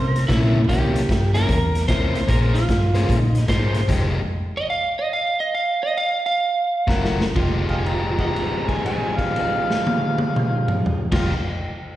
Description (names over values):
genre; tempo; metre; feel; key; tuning
electric blues shuffle; 120-150 BPM; 4/4; swing 65% on 8ths; F minor; A4 = 440 Hz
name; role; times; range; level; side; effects
electric slide guitar; melody; 0.0-11.3 s; E4 to F5; -24 LUFS; right 2 dB; slapback echo
overdriven harmonica; second line; 0.0-0.2, 6.9-11.3 s; C5 to Bb5; -26 LUFS; right 1 dB; slapback echo
vintage muted fingered electric bass; bass; 0.0-4.2, 6.9-11.3 s; F1 to C3; -21 LUFS; equal; none
raw garage drum kit; drums; 0.2-4.0, 6.9-11.2 s; crash cymbal, hi-hat, kick drum, snare drum, toms; -23 LUFS; equal; none
overdriven electric guitar; riff; 0.3-4.2, 6.9-11.3 s; C3 to C5; -24 LUFS; left 3 dB; slapback echo
room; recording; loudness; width
light reverb; live gig heard through the venue's PA, recital hall reverb; -18 LUFS; side -14 dB against mid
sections
0.0-7.4 A section; 7.4-11.4 B section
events
drum fill 0.5, 6.9-7.4; slowing down 3.9-7.4; stop 3.9-6.9; held note 7.4-11.1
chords
0.0 C7b9; 2.3 Bbm9; 3.9 Fm9; 6.9 Gb7; 7.4 Fm9